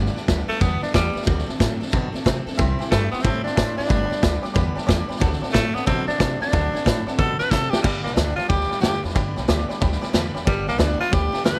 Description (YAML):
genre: rockabilly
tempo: 182 BPM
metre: 4/4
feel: swing 65% on 8ths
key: G major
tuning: A4 = 444 Hz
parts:
  - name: picked steel-string acoustic guitar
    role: accompaniment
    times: 0.0-11.6 s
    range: G2 to A4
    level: -32 LUFS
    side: equal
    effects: none
  - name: upright bass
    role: bass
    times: 0.0-11.6 s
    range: G1 to C3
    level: -28 LUFS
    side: equal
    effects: none
  - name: vintage drum kit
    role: drums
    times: 0.1-11.6 s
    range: crash cymbal, hi-hat, kick drum, snare drum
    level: -25 LUFS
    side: equal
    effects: none
  - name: raspy tenor saxophone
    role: melody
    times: 0.5-11.6 s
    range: G3 to B4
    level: -27 LUFS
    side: equal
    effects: plate reverb, analog delay
  - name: honky-tonk upright piano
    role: accompaniment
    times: 2.6-11.6 s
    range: D5 to D6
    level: -35 LUFS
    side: equal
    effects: plate reverb
room: light reverb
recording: none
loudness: -22 LUFS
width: mono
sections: 0.0-7.8 A section; 7.8-11.6 B section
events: drum fill 7.5-7.8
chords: 0.0 G; 1.3 D7; 2.6 C; 3.9 G; 5.2 D7; 7.8 G